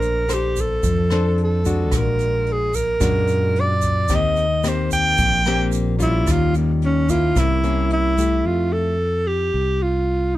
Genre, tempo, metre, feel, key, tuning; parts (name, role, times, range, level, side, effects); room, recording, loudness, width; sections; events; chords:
bossa nova; 110 BPM; 4/4; straight; A4 = 440 Hz
breathy alto saxophone; melody; 0.0-10.4 s; Bb3 to G5; -20 LUFS; right 1 dB
nylon-string guitar; accompaniment; 0.0-9.0 s; Bb2 to C5; -24 LUFS; left 4 dB
fingered electric bass; bass; 0.0-10.4 s; Bb1 to F#2; -21 LUFS; right 1 dB
jazz brush drum kit; drums; 0.0-8.3 s; hi-hat, kick drum, rim click; -26 LUFS; equal
egg shaker; percussion; 0.0-8.5 s; -34 LUFS; right 10 dB
little or no reverb; -17 LUFS; side -15 dB against mid
0.0-8.5 A section; 8.5-10.4 B section
alto saxophone solo 0.0-8.5
0.0 Bbmaj9; 1.9 Bbaug7; 4.1 Eb6; 6.3 Eb9; 7.4 C7b9; 8.5 Fmaj9